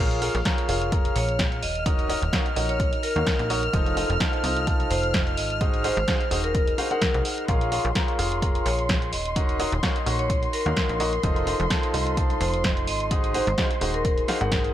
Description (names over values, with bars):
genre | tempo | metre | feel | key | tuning
piano house | 128 BPM | 4/4 | swing 55% on 16ths | Bb minor | A4 = 440 Hz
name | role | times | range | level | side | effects
muted studio violin section | sustained chords | 0.0-14.7 s | C6 to F6 | -32 LUFS | equal | sidechain pumping
warm upright piano | riff | 0.0-14.7 s | Eb4 to Bb5 | -28 LUFS | equal | sidechain pumping, tape echo
plucky analog bass | bass | 0.0-14.7 s | Eb1 to Eb2 | -28 LUFS | equal | sidechain pumping
punchy analog drum machine | drums | 0.1-14.7 s | hi-hat, snare drum | -29 LUFS | equal | none
electronic kick drum | drums | 0.5-14.6 s | none | -26 LUFS | equal | none
vibraphone with medium hard mallets | melody | 1.2-14.6 s | Bb4 to Eb5 | -30 LUFS | equal | tape echo
room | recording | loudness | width
light reverb | echo-heavy mix | -21 LUFS | side -12 dB against mid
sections
0.0-14.7 A section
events
drop 0.0-14.7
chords
0.0 Bbm7; 1.6 Ebm7; 3.7 F7; 5.6 Ab7; 7.5 Bbm7; 9.1 Ebm7; 11.2 F7; 13.1 Ab7